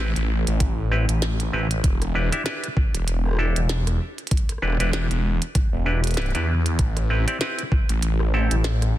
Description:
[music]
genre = glitch hop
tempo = 97 BPM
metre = 4/4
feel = swing 57% on 16ths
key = A minor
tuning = A4 = 439 Hz
[part]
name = auto-wah clav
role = stabs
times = 0.0-8.6 s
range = C4 to E5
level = -28 LUFS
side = equal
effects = sidechain pumping, digital delay
[part]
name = phased detuned saw bass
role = bass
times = 0.0-8.9 s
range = E1 to E2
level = -22 LUFS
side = equal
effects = phaser, overdrive
[part]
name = glitchy drum kit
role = drums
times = 0.2-8.9 s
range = hi-hat, rim click, snare drum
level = -30 LUFS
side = right 1 dB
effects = studio reverb, soft clipping on snare
[part]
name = electronic kick drum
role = drums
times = 0.6-7.9 s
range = none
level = -21 LUFS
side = equal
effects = studio reverb
[sound]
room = little or no reverb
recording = dense, heavily limited modern master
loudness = -20 LUFS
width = side -14 dB against mid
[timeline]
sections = 0.0-9.0 A section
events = none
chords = 0.0 Am9; 1.8 Em7; 6.8 Am9

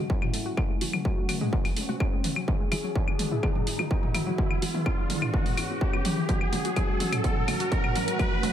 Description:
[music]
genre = melodic techno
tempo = 126 BPM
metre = 4/4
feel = straight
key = F# minor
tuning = A4 = 440 Hz
[part]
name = expressive portamento lead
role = melody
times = 0.0-8.5 s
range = C#4 to G#4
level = -36 LUFS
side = left 1 dB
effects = ensemble chorus, sidechain pumping, ping-pong delay
[part]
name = lush unison pad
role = sustained chords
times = 0.0-8.5 s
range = E3 to A4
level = -39 LUFS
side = equal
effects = none
[part]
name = warbly dusty pluck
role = arpeggios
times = 0.0-8.5 s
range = D3 to F#4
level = -35 LUFS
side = left 1 dB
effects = chorus, sidechain pumping, diffuse ambient delay
[part]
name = filtered dub chord stab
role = stabs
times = 0.0-8.5 s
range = C#3 to F#4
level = -38 LUFS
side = right 1 dB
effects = none
[part]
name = riser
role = sound effects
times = 1.3-8.5 s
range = none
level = -34 LUFS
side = equal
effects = none
[part]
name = warbly tape-like pad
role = texture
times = 0.0-8.5 s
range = A3 to F#5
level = -40 LUFS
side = right 2 dB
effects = chorus, built-in reverb, sidechain pumping
[part]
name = electronic kick drum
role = drums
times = 0.1-8.3 s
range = none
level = -27 LUFS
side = equal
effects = distortion
[part]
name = techno drum kit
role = drums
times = 0.2-8.5 s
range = claves, hi-hat, toms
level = -31 LUFS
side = equal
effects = none
[sound]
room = light reverb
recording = none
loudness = -24 LUFS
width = side -10 dB against mid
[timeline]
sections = 0.0-8.5 A section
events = build-up 0.0-8.5; drum fill 0.0-8.5; riser 1.3-8.5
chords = 0.0 F#m; 2.5 Eadd9; 6.3 F#m

